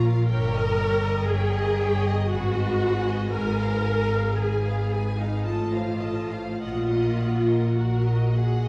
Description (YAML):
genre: classical, slow romantic movement for string orchestra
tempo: 50-62 BPM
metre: 3/4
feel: rubato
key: unclear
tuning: A4 = 439 Hz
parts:
  - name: rich studio violin section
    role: melody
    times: 0.0-8.7 s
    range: Eb5 to A5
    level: -41 LUFS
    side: equal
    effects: none
  - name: rich studio violin section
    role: second line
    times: 0.0-8.7 s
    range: Gb4 to Gb5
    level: -38 LUFS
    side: equal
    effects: none
  - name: clear studio viola section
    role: accompaniment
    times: 0.0-8.7 s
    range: Eb4 to Bb4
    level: -29 LUFS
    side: equal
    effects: none
  - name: clear studio double bass section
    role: bass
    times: 0.0-8.7 s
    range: G1 to Bb1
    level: -29 LUFS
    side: equal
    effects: none
  - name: rich studio cello section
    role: bass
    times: 0.0-8.7 s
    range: G2 to Bb2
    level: -30 LUFS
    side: equal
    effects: none
room: wet scoring stage reverb, RT60 1.8 s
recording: heard from further back in the room, vinyl crackle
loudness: -24 LUFS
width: mono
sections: 0.0-8.7 A section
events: none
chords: 0.3 Eb7/G; 2.3 Abm7; 3.3 Fdim/Ab; 5.5 F7/A; 6.6 Ebm/Bb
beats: | 0.28 1.28 2.29 | 3.33 4.39 5.45 | 6.60 7.77